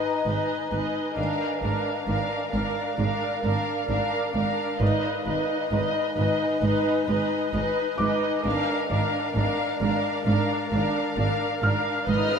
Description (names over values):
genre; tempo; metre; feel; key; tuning
cinematic, suspense film score; 66 BPM; 4/4; straight; unclear; A4 = 440 Hz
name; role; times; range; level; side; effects
muted chamber violin section; melody; 0.0-12.4 s; Eb5 to F5; -32 LUFS; left 6 dB; none
muted chamber viola section; accompaniment; 0.0-12.4 s; D4 to Cb5; -27 LUFS; right 1 dB; none
ethereal airy pad; sustained chords; 0.0-12.4 s; Bb4 to Ab5; -32 LUFS; left 2 dB; ensemble chorus, built-in reverb
clear grand piano; texture; 0.0-12.4 s; Bb5 to F6; -33 LUFS; left 1 dB; none
muted studio cello section; bass; 0.3-12.2 s; Ab2; -30 LUFS; right 2 dB; none
muted symphonic double bass section; bass; 0.3-12.2 s; Ab1; -31 LUFS; right 2 dB; none
riser; sound effects; 12.2-12.4 s; none; -35 LUFS; left 3 dB; none
muted chamber violin section; texture; 12.1-12.4 s; Eb6 to F6; -31 LUFS; left 4 dB; none
room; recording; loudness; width
wet scoring stage reverb, RT60 1.7 s; none; -23 LUFS; side -6 dB against mid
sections
0.0-12.4 A section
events
riser 12.2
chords
0.0 Abm; 1.2 Bb7/Ab; 4.8 Abm; 8.4 Bb7/Ab